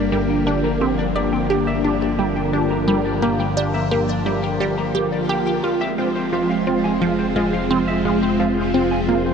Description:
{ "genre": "ambient, sequencer-driven space music", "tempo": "87 BPM", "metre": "4/4", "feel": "straight", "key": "G phrygian", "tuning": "A4 = 441 Hz", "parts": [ { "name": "phased string machine", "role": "sustained chords", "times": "0.0-9.3 s", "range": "D3 to C4", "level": "-20 LUFS", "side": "equal", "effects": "ensemble chorus, phaser" }, { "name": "semi-hollow electric guitar", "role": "arpeggios", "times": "0.0-9.3 s", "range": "F4 to Bb5", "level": "-26 LUFS", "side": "right 1 dB", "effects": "auto-pan, ping-pong delay" }, { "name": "fat analog bass", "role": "bass", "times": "0.0-9.3 s", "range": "F1 to G1", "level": "-29 LUFS", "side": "equal", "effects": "none" }, { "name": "resonant blip pluck", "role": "riff", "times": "0.1-9.3 s", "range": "F3 to D5", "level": "-22 LUFS", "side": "right 1 dB", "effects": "phaser, ping-pong delay" } ], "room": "wet huge ambient reverb, RT60 7.9 s", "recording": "worn, warbling old tape, cassette tape, warbly pitch drift", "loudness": "-17 LUFS", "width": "side -6 dB against mid", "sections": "0.0-9.3 A section", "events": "none", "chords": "0.0 Gm; 5.6 Fm", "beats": "| 0.12 0.81 1.50 2.19 | 2.88 3.57 4.26 4.95 | 5.64 6.33 7.02 7.71 | 8.40 9.09" }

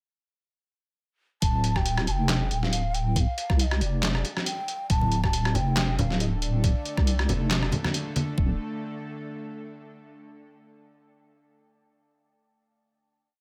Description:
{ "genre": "deep dubstep", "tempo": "138 BPM", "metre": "4/4", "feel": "swing 55% on 16ths, half-time", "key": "D minor", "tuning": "A4 = 440 Hz", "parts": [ { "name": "breathy mellow low ney", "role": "melody", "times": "1.4-7.7 s", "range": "D5 to A5", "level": "-36 LUFS", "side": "equal", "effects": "dub echo" }, { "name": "deep soft wobble bass", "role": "bass", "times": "1.4-8.6 s", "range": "D1 to C2", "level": "-28 LUFS", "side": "equal", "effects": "chorus" }, { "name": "electronic kick drum", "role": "drums", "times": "1.4-8.5 s", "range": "none", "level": "-27 LUFS", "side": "equal", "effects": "overdrive" }, { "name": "trip hop sampler-style drum kit", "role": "drums", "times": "1.4-8.3 s", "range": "handclaps, hi-hat, rim click, snare drum", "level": "-32 LUFS", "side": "equal", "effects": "overdrive" }, { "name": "bowed-like drone", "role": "sustained chords", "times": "6.3-8.6 s", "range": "D3 to A4", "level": "-40 LUFS", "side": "equal", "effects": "built-in reverb" }, { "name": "congas", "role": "percussion", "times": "5.0-8.3 s", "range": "none", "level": "-32 LUFS", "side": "equal", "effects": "none" } ], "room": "digital ambience", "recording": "none", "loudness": "-26 LUFS", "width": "mono", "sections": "1.4-8.4 drop; 8.4-10.1 final chord", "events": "drop 1.4-8.4", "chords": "1.4 D5", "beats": "| 1.42 1.85 2.29 2.73 | 3.16 3.60 4.03 4.46 | 4.90 5.33 5.77 6.20 | 6.64 7.07 7.51 7.94 | 8.38" }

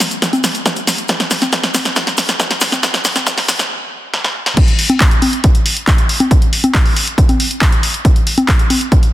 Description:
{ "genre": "trance", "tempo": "138 BPM", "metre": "4/4", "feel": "straight", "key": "none", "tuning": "none", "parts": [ { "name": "punchy analog drum machine", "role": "drums", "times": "0.0-9.1 s", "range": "congas, crash cymbal, handclaps, hi-hat, snare drum", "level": "-14 LUFS", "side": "equal", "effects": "none" }, { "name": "maracas", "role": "percussion", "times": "0.0-3.7 s", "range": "none", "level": "-24 LUFS", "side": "left 4 dB", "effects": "none" }, { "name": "electronic kick drum", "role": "drums", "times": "0.2-9.0 s", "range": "none", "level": "-12 LUFS", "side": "equal", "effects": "high-pass filter on kick, high-pass filter on room" } ], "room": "light reverb", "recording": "dense, heavily limited modern master, high-pass filter", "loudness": "-11 LUFS", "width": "side -15 dB against mid", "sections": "0.0-4.6 A section; 4.6-9.1 B section", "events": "build-up 0.0-4.6; drum fill 0.0-3.7, 4.1-4.6; stop 3.7-4.6; drop 4.6-9.1", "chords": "none", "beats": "0.22 0.66 | 1.09 1.53 1.96 2.40 | 2.83 3.27 3.70 4.14 | 4.57 5.01 5.44 5.88 | 6.31 6.75 7.18 7.62 | 8.05 8.48 8.92" }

